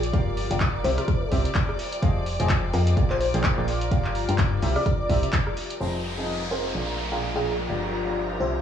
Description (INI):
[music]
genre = piano house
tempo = 127 BPM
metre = 4/4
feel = swing 57% on 16ths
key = F dorian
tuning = A4 = 443 Hz
[part]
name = clear symphonic string section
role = sustained chords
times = 0.0-8.6 s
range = Bb4 to D6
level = -36 LUFS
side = equal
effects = sidechain pumping, cassette tape
[part]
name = solid FM bass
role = bass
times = 0.0-8.6 s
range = F1 to G2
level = -27 LUFS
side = equal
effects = tube saturation, sidechain pumping
[part]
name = punchy analog drum machine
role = drums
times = 0.0-5.8 s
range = handclaps, hi-hat, rim click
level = -31 LUFS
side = left 1 dB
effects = cassette tape
[part]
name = deep dark ambient pad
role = texture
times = 0.0-8.6 s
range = F4 to D5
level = -33 LUFS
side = left 1 dB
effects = chorus, built-in reverb, sidechain pumping, cassette tape
[part]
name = clear upright piano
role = riff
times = 0.1-8.6 s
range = Bb2 to Ab5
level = -31 LUFS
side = left 1 dB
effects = sidechain pumping, low-pass filter, cassette tape, analog delay
[part]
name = electronic kick drum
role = drums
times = 0.1-5.4 s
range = none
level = -25 LUFS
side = equal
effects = cassette tape
[part]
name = bell-like FM electric piano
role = melody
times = 0.8-8.6 s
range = Ab4 to D5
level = -31 LUFS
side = left 1 dB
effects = chorus, analog delay
[part]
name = downlifter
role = sound effects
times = 5.8-8.6 s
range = none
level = -31 LUFS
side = right 1 dB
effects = none
[sound]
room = light reverb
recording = home recording on cassette, small room ambience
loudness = -22 LUFS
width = side -9 dB against mid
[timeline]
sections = 0.0-5.8 A section; 5.8-8.6 B section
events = filter sweep on upright piano 5.8-8.6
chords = 0.1 Gm7; 0.8 C7; 2.0 Fm7; 3.0 Bb7; 3.9 Gm7; 4.6 C7; 5.8 Fm7; 6.7 Bb7; 7.7 Gm7